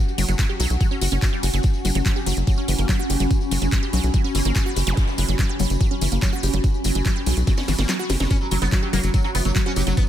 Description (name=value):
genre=psychedelic trance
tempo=144 BPM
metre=4/4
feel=straight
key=unclear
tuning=A4 = 440 Hz
part: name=granular cloud pad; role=texture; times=0.0-10.1 s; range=C#4 to B5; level=-28 LUFS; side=equal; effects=built-in reverb, sidechain pumping
part: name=tambourine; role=percussion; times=0.1-10.1 s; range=none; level=-35 LUFS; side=left 6 dB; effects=none
part: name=wide unison pluck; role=riff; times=0.2-9.9 s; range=E3 to G4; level=-27 LUFS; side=left 1 dB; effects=auto-pan, sidechain pumping, ping-pong delay
part: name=tight sequencer bass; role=bass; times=0.2-9.9 s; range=F#1 to B1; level=-22 LUFS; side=equal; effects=none
part: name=techno drum kit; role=drums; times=0.2-10.1 s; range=handclaps, hi-hat, snare drum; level=-29 LUFS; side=right 1 dB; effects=studio reverb
part: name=electronic kick drum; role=drums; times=0.4-10.1 s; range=none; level=-20 LUFS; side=equal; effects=studio reverb
part: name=zap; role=sound effects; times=4.9-5.0 s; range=none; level=-33 LUFS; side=equal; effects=none
part: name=sitar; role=melody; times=8.3-10.0 s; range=F#3 to C#4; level=-28 LUFS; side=right 1 dB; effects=phaser, sidechain pumping, ping-pong delay
part: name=bubbling stepped-filter texture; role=sustained chords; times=8.3-10.1 s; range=F#3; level=-30 LUFS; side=right 2 dB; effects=chorus, built-in reverb, sidechain pumping
room=light reverb, digital ambience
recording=none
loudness=-18 LUFS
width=side -11 dB against mid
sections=0.0-10.1 A section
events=drum fill 7.5-8.3; kick drops out 7.9-8.3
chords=0.0 F#5